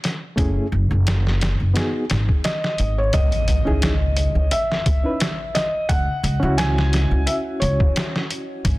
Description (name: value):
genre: trip hop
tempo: 87 BPM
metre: 4/4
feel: swing 54% on 16ths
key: C# minor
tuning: A4 = 440 Hz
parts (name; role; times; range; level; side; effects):
- trip hop sampler-style drum kit; drums; 0.0-8.8 s; hi-hat, kick drum, snare drum; -22 LUFS; equal; none
- reed electric piano; accompaniment; 0.4-8.6 s; A3 to B4; -27 LUFS; equal; tremolo, vintage 12-bit sampler grit, tape echo
- upright bass; bass; 0.4-8.8 s; F#1 to C#2; -20 LUFS; equal; none
- felt-muted upright piano; melody; 2.4-8.3 s; C#5 to G#5; -25 LUFS; equal; dub echo
- impact; sound effects; 3.1-5.9 s; none; -27 LUFS; equal; none
room: digital ambience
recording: dense, heavily limited modern master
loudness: -18 LUFS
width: side -20 dB against mid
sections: 0.0-3.1 A section; 3.1-8.8 B section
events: impact 3.1-5.9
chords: 0.4 F#m7; 1.8 G#m7; 3.1 C#madd9